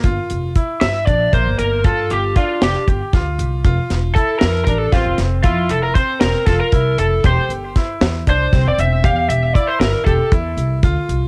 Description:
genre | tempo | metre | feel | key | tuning
progressive instrumental, band music in an uneven meter | 234 BPM (eighths) | 7/8 | straight | unclear | A4 = 440 Hz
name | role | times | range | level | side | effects
bright grand piano | arpeggios | 0.0-11.3 s | Bb3 to G4 | -27 LUFS | equal | cassette tape
upright bass | bass | 0.0-11.3 s | E1 to G2 | -22 LUFS | equal | none
deep reggae drum kit | drums | 0.0-11.2 s | hi-hat, kick drum, snare drum | -18 LUFS | equal | cassette tape
lead guitar through a small cranked amp | melody | 0.8-10.3 s | F4 to F5 | -21 LUFS | equal | overdrive, cassette tape, tape echo
room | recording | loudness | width
little or no reverb | home recording on cassette | -17 LUFS | mono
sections
0.0-11.3 A section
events
lead electric guitar solo 0.0-11.3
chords
0.0 Gm7; 3.6 Fmaj7; 7.2 Fmaj7sus2/E (rootless)

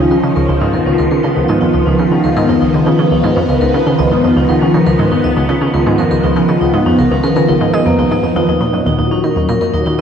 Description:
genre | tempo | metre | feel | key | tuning
ambient, sequencer-driven space music | 120 BPM | 4/4 | straight | unclear | A4 = 439 Hz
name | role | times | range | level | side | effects
phased string machine | sustained chords | 0.0-10.0 s | Eb2 to Db4 | -12 LUFS | equal | ensemble chorus, phaser
vibraphone with hard mallets | arpeggios | 0.0-10.0 s | Bb3 to Eb5 | -21 LUFS | left 2 dB | auto-pan, tape echo
analog pluck | riff | 0.0-10.0 s | Db2 to Ab3 | -15 LUFS | equal | chorus, tape echo
room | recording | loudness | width
wet lush hall reverb, RT60 2.8 s | dark, warm production | -10 LUFS | side -7 dB against mid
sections
0.0-10.0 A section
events
fade-in on vibraphone 0.0-10.0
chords
0.0 Dbadd9; 8.5 Ebm

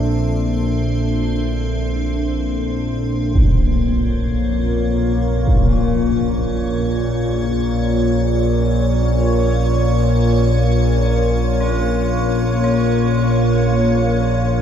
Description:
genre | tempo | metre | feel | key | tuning
dark ambient drone | free time | none | none | Bb harmonic minor | A4 = 442 Hz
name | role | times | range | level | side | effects
sweeping resonant pad | sustained chords | 0.0-14.6 s | Bb3 to E5 | -22 LUFS | equal | chorus, shimmer reverb
analog drone | drone | 0.0-14.6 s | Bb1 to Bb2 | -17 LUFS | left 1 dB | chorus
icy glass pad | texture | 0.0-14.6 s | C4 to Db5 | -27 LUFS | right 3 dB | chorus, built-in reverb, shimmer reverb
impact | percussion | 3.4-5.7 s | none | -21 LUFS | right 1 dB | low-pass filter on sfx
tubular bells | arpeggios | 5.7-14.6 s | Db4 to F4 | -34 LUFS | equal | ping-pong delay, shimmer reverb
room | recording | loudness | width
wet cathedral reverb, RT60 6.5 s | dark, warm production | -15 LUFS | side -9 dB against mid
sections
0.0-3.4 A section; 3.4-14.6 B section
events
fade-in on tubular bells 3.4-14.6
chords
0.0 D5; 3.4 Bbm

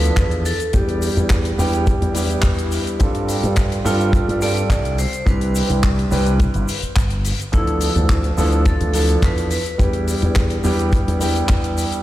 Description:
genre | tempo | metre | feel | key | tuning
nu-disco, nu disco | 106 BPM | 4/4 | straight | unclear | A4 = 440 Hz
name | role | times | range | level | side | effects
vibraphone with hard mallets | melody | 0.0-10.0 s | E4 to D5 | -26 LUFS | equal | tape echo
dark baby grand piano | accompaniment | 0.0-12.0 s | F3 to B4 | -22 LUFS | right 1 dB | sidechain pumping, slapback echo
slap bass with an envelope filter | bass | 0.0-11.8 s | G1 to G2 | -20 LUFS | equal | tube saturation
damped 70s drum kit | drums | 0.0-12.0 s | handclaps, hi-hat | -27 LUFS | left 2 dB | small room ambience
egg shaker | percussion | 0.0-12.0 s | none | -36 LUFS | left 1 dB | none
kick drum | drums | 0.2-11.6 s | none | -16 LUFS | equal | small room ambience
room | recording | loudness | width
light reverb, small room reverb | played on a big sound system in a bare room, large studio reverb | -16 LUFS | side -15 dB against mid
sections
0.0-12.0 A section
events
none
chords
0.5 Em7; 3.0 G9sus4; 5.0 Cmaj7; 7.5 Dm69; 9.5 Em7

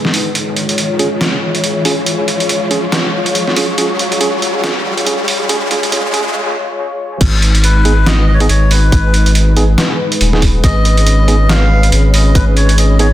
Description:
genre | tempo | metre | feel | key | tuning
deep dubstep | 140 BPM | 4/4 | swing 58% on 16ths, half-time | G# dorian | A4 = 443 Hz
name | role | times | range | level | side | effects
dark analog pad | sustained chords | 0.0-13.1 s | G#3 to C#5 | -19 LUFS | left 2 dB | chorus
trip hop sampler-style drum kit | drums | 0.0-13.1 s | crash cymbal, hi-hat, snare drum | -17 LUFS | right 1 dB | studio reverb
riser | sound effects | 0.0-6.4 s | none | -20 LUFS | equal | none
tine electric piano | stabs | 1.0-13.1 s | B3 to G#4 | -20 LUFS | right 2 dB | vintage 12-bit sampler grit, dub echo
saturated sub bass | bass | 7.2-13.1 s | D#1 to G#1 | -10 LUFS | equal | none
electronic kick drum | drums | 7.2-12.5 s | none | -12 LUFS | equal | studio reverb
melodica | melody | 7.6-13.1 s | B4 to E#5 | -19 LUFS | left 1 dB | dub echo
room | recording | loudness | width
light reverb | dense, heavily limited modern master, high-pass filter | -10 LUFS | side -13 dB against mid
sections
0.0-7.2 A section; 7.2-13.1 B section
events
build-up 0.0-7.2; riser 0.0-6.4; filter sweep on tine electric piano 0.0-7.2; break 6.4-7.2; drop 7.2-13.1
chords
0.4 C#; 7.2 G#m

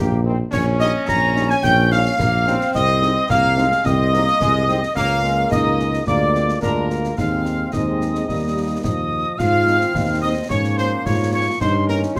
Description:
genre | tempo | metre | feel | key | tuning
military-style march for wind band | 108 BPM | 2/4 | straight | Ab major | A4 = 440 Hz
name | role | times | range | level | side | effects
dark trumpet section | melody | 0.0-12.2 s | G4 to Bb5 | -27 LUFS | equal | none
clear woodwind section | second line | 0.0-12.2 s | G4 to Bb5 | -28 LUFS | equal | none
wooden piccolo | second line | 0.0-12.2 s | G5 to Bb6 | -26 LUFS | equal | none
clear trombone section | sustained chords | 0.0-12.2 s | Eb3 to D4 | -29 LUFS | equal | none
mellow tuba | bass | 0.0-12.2 s | Bb1 to Ab2 | -23 LUFS | equal | none
mellow French horn section | accompaniment | 0.2-12.0 s | G3 to F4 | -28 LUFS | equal | none
concert snare drum, clash cymbals and concert bass drum | drums | 0.5-12.2 s | none | -30 LUFS | equal | none
warm euphonium | second line | 7.7-12.2 s | F3 to G4 | -27 LUFS | equal | none
room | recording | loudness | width
moderate large studio reverb, RT60 0.8 s | close, detailed microphones | -19 LUFS | mono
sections
0.0-9.4 A section; 9.4-12.2 B section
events
none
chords
0.0 Eb; 0.5 Eb7/Bb; 2.7 Ab/C; 5.0 Bbm7/Db; 6.1 Bb7/D; 7.2 Ab/Eb; 8.3 Eb; 9.4 Ab; 10.5 Bbm7/Ab; 11.6 Eb7/G

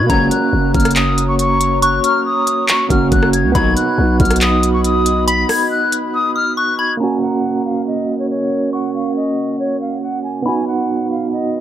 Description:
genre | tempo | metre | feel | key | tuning
hip hop, trap | 139 BPM | 4/4 | half-time | F# major | A4 = 440 Hz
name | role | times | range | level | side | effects
breathy silver concert flute | melody | 0.0-11.6 s | C#5 to B6 | -19 LUFS | left 1 dB | low-pass filter, tape echo
soft synth bell | second line | 0.0-11.3 s | A#5 to D#6 | -23 LUFS | left 3 dB | chorus, phaser, tremolo, tape echo
overdriven tine electric piano | accompaniment | 0.0-11.6 s | A#3 to F#4 | -19 LUFS | right 4 dB | fast tremolo, low-pass filter
dark analog pad | sustained chords | 0.0-11.6 s | C#4 to B5 | -24 LUFS | left 1 dB | chorus
growling 808-style bass | bass | 0.0-5.5 s | F#1 to C#2 | -17 LUFS | left 1 dB | none
clear brass ensemble | stabs | 0.1-0.4, 3.6-3.9 s | C#2 to F#3 | -28 LUFS | left 7 dB | none
trap drum kit | drums | 0.1-6.0 s | handclaps, hi-hat, kick drum, rim click | -17 LUFS | equal | overdrive
room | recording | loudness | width
light reverb | low-pass filter | -14 LUFS | side -11 dB against mid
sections
0.0-7.0 A section; 7.0-11.6 B section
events
silent gap 6.1-7.0; filter sweep 7.0-11.6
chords
0.1 F#; 3.5 B; 7.0 F#; 10.5 B

